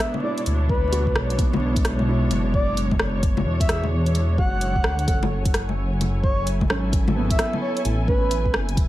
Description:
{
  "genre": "future garage",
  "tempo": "130 BPM",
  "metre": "4/4",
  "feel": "swing 63% on 16ths",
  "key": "B dorian",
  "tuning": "A4 = 440 Hz",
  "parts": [
    { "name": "breathy flute-like synth lead", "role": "melody", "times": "0.0-8.5 s", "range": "B4 to F#5", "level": "-28 LUFS", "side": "equal", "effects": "chorus, cassette tape, dub echo" },
    { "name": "felt-muted upright piano", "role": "accompaniment", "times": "0.0-8.8 s", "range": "B3 to C#5", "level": "-31 LUFS", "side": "right 3 dB", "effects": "sidechain pumping, tape echo" },
    { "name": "muted studio string section", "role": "sustained chords", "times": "0.0-8.9 s", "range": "B2 to G#5", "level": "-29 LUFS", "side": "left 1 dB", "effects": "vintage 12-bit sampler grit, sidechain pumping" },
    { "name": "garage drum kit", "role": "drums", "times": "0.0-8.9 s", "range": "bongos, hi-hat, rim click", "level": "-26 LUFS", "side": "left 1 dB", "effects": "small room ambience" },
    { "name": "dark detuned saw bass", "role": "bass", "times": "0.5-8.9 s", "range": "E1 to E2", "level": "-23 LUFS", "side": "equal", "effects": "sidechain pumping" },
    { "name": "electronic kick drum", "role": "drums", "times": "0.7-8.9 s", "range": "none", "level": "-23 LUFS", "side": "equal", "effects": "small room ambience" }
  ],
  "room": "digital ambience",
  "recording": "vinyl crackle",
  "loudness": "-19 LUFS",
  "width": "side -15 dB against mid",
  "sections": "0.0-8.9 A section",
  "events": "none",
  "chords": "0.0 Bm69; 5.1 F#m9",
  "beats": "0.00 0.47 0.93 | 1.39 1.85 2.31 2.77 | 3.23 3.70 4.16 4.62 | 5.08 5.54 6.00 6.47 | 6.93 7.39 7.85 8.31 | 8.77"
}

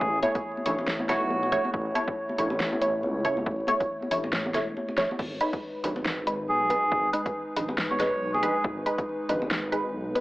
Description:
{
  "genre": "deep dubstep",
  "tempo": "139 BPM",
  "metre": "4/4",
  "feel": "swing 58% on 16ths, half-time",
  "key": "G# phrygian",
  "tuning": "A4 = 440 Hz",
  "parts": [
    { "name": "melodica", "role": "melody", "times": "0.0-1.7, 6.5-8.6 s", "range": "F#4 to C#5", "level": "-28 LUFS", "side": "equal", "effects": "dub echo" },
    { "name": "dark analog pad", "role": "sustained chords", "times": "0.0-10.2 s", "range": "G#3 to C#5", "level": "-32 LUFS", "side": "equal", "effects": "chorus" },
    { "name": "dark detuned saw bass", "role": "bass", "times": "0.0-10.2 s", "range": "E1 to C#2", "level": "-35 LUFS", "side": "equal", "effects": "none" },
    { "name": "electronic kick drum", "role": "drums", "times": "0.0-9.1 s", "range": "none", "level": "-34 LUFS", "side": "equal", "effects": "overdrive, small room ambience" },
    { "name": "filtered dub chord stab", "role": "stabs", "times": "0.2-10.2 s", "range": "G#3 to C#5", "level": "-28 LUFS", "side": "equal", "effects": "phaser, analog chorus, dub echo" },
    { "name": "deep house drum kit", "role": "drums", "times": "0.2-10.2 s", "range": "crash cymbal, hi-hat, snare drum", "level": "-31 LUFS", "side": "equal", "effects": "overdrive, small room ambience" },
    { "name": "congas", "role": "percussion", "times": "0.2-10.2 s", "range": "none", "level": "-36 LUFS", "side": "equal", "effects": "dub echo" }
  ],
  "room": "moderate digital room reverb, RT60 1.1 s, digital ambience",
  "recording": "vinyl crackle, AM radio sound",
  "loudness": "-25 LUFS",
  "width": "side -18 dB against mid",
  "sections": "0.0-5.2 A section; 5.2-10.2 A section",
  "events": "drop 0.0-5.2, 5.2-10.2; drum fill 5.0",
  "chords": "0.0 A; 5.2 G#m",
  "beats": "| 0.01 0.44 0.87 1.31 | 1.74 2.17 2.60 3.03 | 3.46 3.90 4.33 4.76 | 5.19 5.62 6.05 6.49 | 6.92 7.35 7.78 8.21 | 8.64 9.08 9.51 9.94"
}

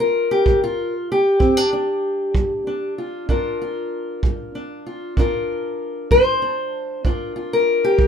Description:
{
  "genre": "acoustic country blues, solo or duo",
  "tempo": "64 BPM (dotted quarters)",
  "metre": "12/8",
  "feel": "straight",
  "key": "G minor",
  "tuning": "A4 = 443 Hz",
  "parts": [
    { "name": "fingerpicked steel-string acoustic guitar", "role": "melody", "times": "0.0-8.1 s", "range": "G2 to C5", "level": "-19 LUFS", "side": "left 1 dB", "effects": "none" },
    { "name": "kick drum", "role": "drums", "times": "0.5-8.1 s", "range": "none", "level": "-20 LUFS", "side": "right 2 dB", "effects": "none" }
  ],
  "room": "light reverb",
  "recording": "minimal, uncompressed stereo recording",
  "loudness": "-18 LUFS",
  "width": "side -7 dB against mid",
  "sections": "0.0-8.1 A section",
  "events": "none",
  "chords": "0.0 Gm7",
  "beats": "0.46 | 1.40 2.34 3.28 4.22 | 5.17 6.11 7.05 7.99"
}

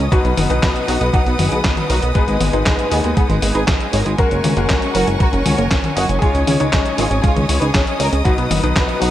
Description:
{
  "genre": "italo disco",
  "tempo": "118 BPM",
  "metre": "4/4",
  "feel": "straight",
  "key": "unclear",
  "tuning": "A4 = 441 Hz",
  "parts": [
    { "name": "warm symphonic violin section", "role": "melody", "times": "0.0-9.1 s", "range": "G#3 to D#5", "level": "-22 LUFS", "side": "equal", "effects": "tape echo" },
    { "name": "warm symphonic string section", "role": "sustained chords", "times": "0.0-9.1 s", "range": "A#4 to D#6", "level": "-24 LUFS", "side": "right 1 dB", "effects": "none" },
    { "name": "wide unison pluck", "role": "arpeggios", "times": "0.0-9.1 s", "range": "F#3 to D#5", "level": "-26 LUFS", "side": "right 3 dB", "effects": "tape echo" },
    { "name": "bright grand piano", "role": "stabs", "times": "0.0-9.1 s", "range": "G#2 to C#5", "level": "-24 LUFS", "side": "left 5 dB", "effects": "none" },
    { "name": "chorused synth bass", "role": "bass", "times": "0.0-9.1 s", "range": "F#1 to D#2", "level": "-19 LUFS", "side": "equal", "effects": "none" },
    { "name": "clean 12-bit digital drum machine", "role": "drums", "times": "0.1-9.1 s", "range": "handclaps, hi-hat, snare drum, toms", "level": "-20 LUFS", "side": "left 1 dB", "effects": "gated reverb" },
    { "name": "electronic kick drum", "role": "drums", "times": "0.1-8.9 s", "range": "none", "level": "-17 LUFS", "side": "equal", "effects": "none" }
  ],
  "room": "light reverb, digital ambience",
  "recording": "none",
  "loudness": "-14 LUFS",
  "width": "side -12 dB against mid",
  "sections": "0.0-9.1 A section",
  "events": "none",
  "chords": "0.1 B; 2.2 G#m; 4.2 F#add9; 6.2 C#sus2; 8.3 B",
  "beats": "| 0.12 0.63 1.14 1.64 | 2.15 2.66 3.17 3.68 | 4.19 4.70 5.20 5.71 | 6.22 6.73 7.24 7.75 | 8.25 8.76"
}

